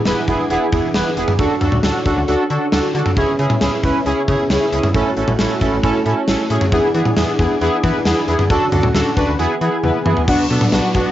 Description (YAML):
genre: synth-pop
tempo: 135 BPM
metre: 4/4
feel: straight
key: unclear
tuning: A4 = 440 Hz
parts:
  - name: ensemble organ-string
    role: sustained chords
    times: 0.0-11.1 s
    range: C#3 to G#4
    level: -23 LUFS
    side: left 1 dB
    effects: ensemble chorus, cassette tape
  - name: analog synth brass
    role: accompaniment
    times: 0.1-11.1 s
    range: B3 to B4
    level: -18 LUFS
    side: right 1 dB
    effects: chorus, cassette tape
  - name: slap-like FM bass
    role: bass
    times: 0.1-11.0 s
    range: E1 to E3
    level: -21 LUFS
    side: equal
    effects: none
  - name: gated 80s drum kit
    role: drums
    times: 0.1-11.1 s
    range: crash cymbal, hi-hat, kick drum, snare drum, toms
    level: -19 LUFS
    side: equal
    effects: none
  - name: downlifter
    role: sound effects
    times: 10.3-11.1 s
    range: none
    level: -28 LUFS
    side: equal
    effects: none
room: moderate booth ambience, RT60 0.2 s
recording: home recording on cassette, nothing above 7.6 kHz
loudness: -14 LUFS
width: side -12 dB against mid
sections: 0.0-10.3 A section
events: drum fill 9.8-10.3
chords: 0.0 E7; 1.4 Dmaj7; 3.2 C#m7; 4.9 A6; 6.7 E7; 8.5 Dmaj7; 9.4 E; 10.3 Bm